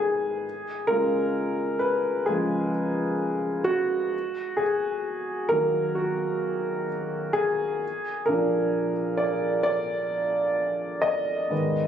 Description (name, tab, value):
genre	pop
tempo	65 BPM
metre	4/4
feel	straight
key	unclear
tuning	A4 = 439 Hz
part	warm upright piano	solo	0.0-11.9 s	Ab2 to Eb5	-24 LUFS	equal	tape echo
room	light reverb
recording	recorded on a phone in the room, club reverb, compression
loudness	-24 LUFS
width	side -9 dB against mid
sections	0.0-11.9 A section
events	upright piano solo 0.0-11.9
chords	0.4 Db; 4.1 Ebm; 7.8 Bb